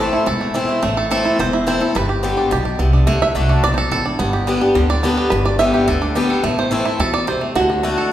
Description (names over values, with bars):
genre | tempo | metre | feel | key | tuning
bluegrass | 214 BPM | 4/4 | straight | A dorian | A4 = 440 Hz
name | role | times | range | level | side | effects
bluegrass banjo | melody | 0.0-8.1 s | G3 to E5 | -19 LUFS | right 3 dB | none
picked swing-style acoustic guitar | accompaniment | 0.0-8.1 s | E2 to G4 | -19 LUFS | left 2 dB | none
upright bass | bass | 0.0-7.9 s | E1 to E2 | -21 LUFS | equal | none
room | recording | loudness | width
wet recital hall reverb, RT60 1.5 s | recorded in a church or concert hall | -15 LUFS | side -12 dB against mid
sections
0.0-7.6 A section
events
five-string banjo solo 0.0-8.1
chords
0.0 Am; 2.0 G; 3.1 D; 4.2 G; 6.4 Am; 7.6 D